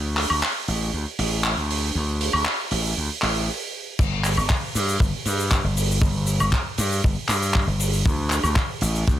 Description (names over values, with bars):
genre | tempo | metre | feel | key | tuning
nu-disco, nu disco | 118 BPM | 4/4 | straight | unclear | A4 = 440 Hz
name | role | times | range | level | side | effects
gritty slap bass | bass | 0.0-9.2 s | G1 to G2 | -24 LUFS | equal | overdrive
tight funk drum kit | drums | 0.2-9.2 s | crash cymbal, handclaps, hi-hat, shaker, woodblock | -24 LUFS | right 1 dB | none
kick drum | drums | 4.0-9.2 s | none | -22 LUFS | equal | none
room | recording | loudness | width
light reverb | none | -20 LUFS | side -12 dB against mid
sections
0.0-4.0 A section; 4.0-9.2 B section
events
build-up 0.0-4.0; stop 3.5-4.0; drop 4.0-9.2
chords
none